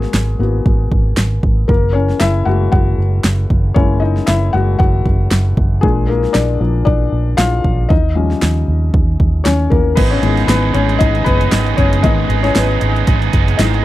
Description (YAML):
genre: piano-driven pop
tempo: 116 BPM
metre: 4/4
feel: swing 56% on 16ths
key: unclear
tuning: A4 = 445 Hz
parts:
  - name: felt-muted upright piano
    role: accompaniment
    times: 0.0-13.8 s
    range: Eb3 to Gb5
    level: -18 LUFS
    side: left 5 dB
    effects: none
  - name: vintage muted fingered electric bass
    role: bass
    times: 0.0-13.8 s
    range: Gb1 to Eb2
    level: -15 LUFS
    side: right 1 dB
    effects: none
  - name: deep house drum kit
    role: drums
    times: 0.0-13.8 s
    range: crash cymbal, handclaps, hi-hat, kick drum, snare drum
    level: -15 LUFS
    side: right 1 dB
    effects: none
  - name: small flute group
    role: sustained chords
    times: 10.0-13.8 s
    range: Cb5 to Eb6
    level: -27 LUFS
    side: equal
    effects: none
  - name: crunchy overdriven guitar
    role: riff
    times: 10.0-13.8 s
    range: Ab2 to Ab4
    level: -20 LUFS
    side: right 14 dB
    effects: spring reverb
room: little or no reverb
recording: dry, close 1970s-style studio recording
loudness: -12 LUFS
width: side -15 dB against mid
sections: 0.0-10.0 A section; 10.0-13.8 B section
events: felt piano solo 0.0-10.0, 10.0-13.8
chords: 0.0 Abm7; 1.7 Gb7; 5.8 Bb; 7.9 Eb7; 10.0 Abm